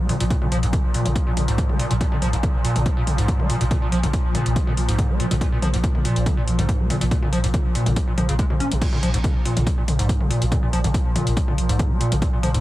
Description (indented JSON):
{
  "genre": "driving peak-time techno",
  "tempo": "141 BPM",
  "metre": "4/4",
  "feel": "straight",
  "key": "unclear",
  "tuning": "A4 = 442 Hz",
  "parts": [
    { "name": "overdriven acid bass", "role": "riff", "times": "0.0-12.6 s", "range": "Ab2 to Db4", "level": "-25 LUFS", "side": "equal", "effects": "lush chorus, sidechain pumping" },
    { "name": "warm sub bass", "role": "bass", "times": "0.0-12.6 s", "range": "Bb1", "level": "-24 LUFS", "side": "equal", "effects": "overdrive, sidechain pumping, low-pass filter" },
    { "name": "swarming drone", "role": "drone", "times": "0.0-12.6 s", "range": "Bb2 to F3", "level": "-28 LUFS", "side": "equal", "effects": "built-in reverb, sidechain pumping" },
    { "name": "techno drum kit", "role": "drums", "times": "0.1-12.6 s", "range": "crash cymbal, hi-hat, toms", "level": "-28 LUFS", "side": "left 1 dB", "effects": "sidechain pumping on hats, sidechain pumping on cymbals, sidechain pumping on toms" },
    { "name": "electronic kick drum", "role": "drums", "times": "0.3-12.3 s", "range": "none", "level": "-22 LUFS", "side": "equal", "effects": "none" }
  ],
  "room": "little or no reverb",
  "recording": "heavily compressed radio sound",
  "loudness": "-18 LUFS",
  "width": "side -16 dB against mid",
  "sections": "0.0-12.6 A section",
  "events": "filter sweep on acid bass 0.0-12.6",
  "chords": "0.0 Bb5",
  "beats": "| 0.30 0.73 1.16 1.58 | 2.01 2.43 2.86 3.28 | 3.71 4.13 4.56 4.99 | 5.41 5.84 6.26 6.69 | 7.11 7.54 7.96 8.39 | 8.81 9.24 9.67 10.09 | 10.52 10.94 11.37 11.79 | 12.22"
}